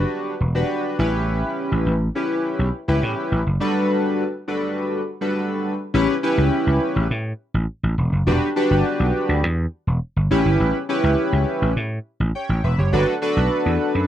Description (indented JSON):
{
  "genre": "early-eighties boogie funk",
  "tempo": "103 BPM",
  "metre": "4/4",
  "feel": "straight",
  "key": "unclear",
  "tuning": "A4 = 440 Hz",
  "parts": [
    { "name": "chorused polysynth", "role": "accompaniment", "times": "0.0-14.1 s", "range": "G3 to G5", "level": "-21 LUFS", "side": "equal", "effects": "none" },
    { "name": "vintage slap bass", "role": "bass", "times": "0.0-14.1 s", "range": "E1 to A2", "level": "-20 LUFS", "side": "equal", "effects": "none" }
  ],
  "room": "moderate studio ambience, RT60 0.5 s",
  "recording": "rough home demo mix",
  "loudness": "-19 LUFS",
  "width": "side -11 dB against mid",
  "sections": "0.0-5.9 A section; 5.9-14.1 B section",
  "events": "none",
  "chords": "0.0 Em7; 1.0 A7; 3.6 Gmaj7; 5.9 A7; 8.3 Em7; 10.3 A7; 12.9 Gmaj7"
}